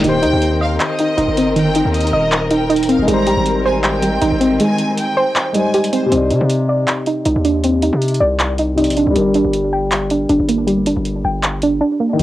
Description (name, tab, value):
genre	hip hop, trap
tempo	158 BPM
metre	4/4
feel	half-time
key	C minor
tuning	A4 = 442 Hz
part	clear studio violin section	second line	0.0-6.1 s	C5 to Bb5	-23 LUFS	right 1 dB	cassette tape, tape echo
part	dark concert grand piano	accompaniment	0.0-12.2 s	C3 to D5	-20 LUFS	left 2 dB	low-pass filter, cassette tape
part	warm symphonic string section	sustained chords	0.0-6.1 s	Eb3 to Bb4	-24 LUFS	left 2 dB	cassette tape
part	soft round pluck	arpeggios	0.0-12.2 s	Eb3 to G5	-16 LUFS	right 1 dB	chorus, low-pass filter, cassette tape, tape echo
part	distorted 808-style bass	bass	0.0-12.2 s	D1 to C3	-20 LUFS	equal	distortion
part	booming analog drum machine	drums	0.0-12.2 s	handclaps, hi-hat	-21 LUFS	equal	cassette tape
room	little or no reverb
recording	home recording on cassette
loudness	-13 LUFS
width	side -15 dB against mid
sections	0.0-6.1 A section; 6.1-12.2 B section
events	kick muted 4.6-6.1; filter sweep 6.1-12.2; silent gap 11.8-12.2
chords	0.0 Eb6; 3.1 Abmaj7; 6.1 Cmadd9; 9.2 Gm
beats	| 0.04 0.42 0.80 1.18 | 1.56 1.94 2.32 2.70 | 3.08 3.46 3.84 4.22 | 4.60 4.98 5.36 5.74 | 6.12 6.50 6.88 7.26 | 7.64 8.02 8.40 8.78 | 9.16 9.54 9.92 10.30 | 10.68 11.05 11.44 11.81 | 12.20